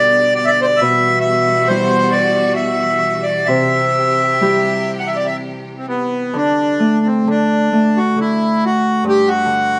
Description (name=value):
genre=celtic folk, Celtic slow air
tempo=60-71 BPM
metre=3/4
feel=rubato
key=D mixolydian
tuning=A4 = 439 Hz
part: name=accordion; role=melody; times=0.0-9.8 s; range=B3 to F#5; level=-17 LUFS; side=equal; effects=none
part: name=Celtic harp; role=accompaniment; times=0.0-9.8 s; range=G2 to G4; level=-21 LUFS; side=equal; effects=none
part: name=clear studio string section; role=sustained chords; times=0.0-6.3 s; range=B2 to G4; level=-26 LUFS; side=equal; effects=none
room=wet stone room reverb, RT60 1.0 s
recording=band playing live in one room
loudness=-15 LUFS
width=mono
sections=0.0-6.3 A section; 6.3-9.8 B section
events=none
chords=0.0 G/B; 0.8 Emadd9/B; 3.5 C; 6.3 D5; 9.1 G5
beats=| 0.81 1.69 2.57 | 3.48 4.41 5.38 | 6.35 7.28 8.18 | 9.05